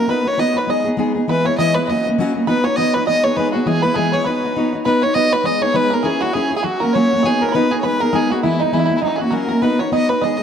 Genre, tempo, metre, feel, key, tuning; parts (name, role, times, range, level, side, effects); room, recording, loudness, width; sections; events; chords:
celtic folk, Celtic reel; 202 BPM; 4/4; swing 56% on 8ths; B major; A4 = 440 Hz
warm fiddle; melody; 0.0-10.4 s; D#4 to D#5; -19 LUFS; left 1 dB
bluegrass banjo; second line; 0.0-10.4 s; D#4 to D#5; -23 LUFS; right 4 dB
fingerpicked steel-string acoustic guitar; accompaniment; 0.0-10.4 s; E3 to C#5; -18 LUFS; left 1 dB
wet plate reverb, RT60 2.9 s; heard from further back in the room; -15 LUFS; side -8 dB against mid
0.0-4.9 A section; 4.9-10.4 A section
0.1 B; 0.7 G#m; 1.3 E; 1.9 F#; 2.5 B; 3.1 G#m; 3.7 E; 4.3 Badd9; 4.9 B; 5.5 G#m; 6.0 C#m; 6.6 F#; 7.2 B; 7.8 G#m; 8.4 E; 9.0 F#; 9.6 B